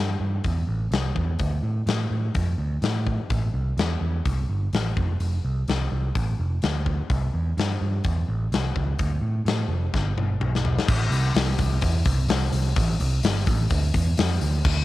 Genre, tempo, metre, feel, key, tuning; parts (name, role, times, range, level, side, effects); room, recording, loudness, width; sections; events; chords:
blues rock power trio and southern rock; 126 BPM; 4/4; straight; A minor; A4 = 440 Hz
overdriven picked electric bass; bass; 0.0-14.8 s; F1 to A2; -24 LUFS; right 1 dB
big rock drum kit; drums; 0.4-14.8 s; crash cymbal, hi-hat, kick drum, snare drum, toms; -26 LUFS; left 2 dB
little or no reverb; 1960s-style stereo; -22 LUFS; side -16 dB against mid
0.0-10.9 A section; 10.9-14.8 B section
drum fill 9.9-10.9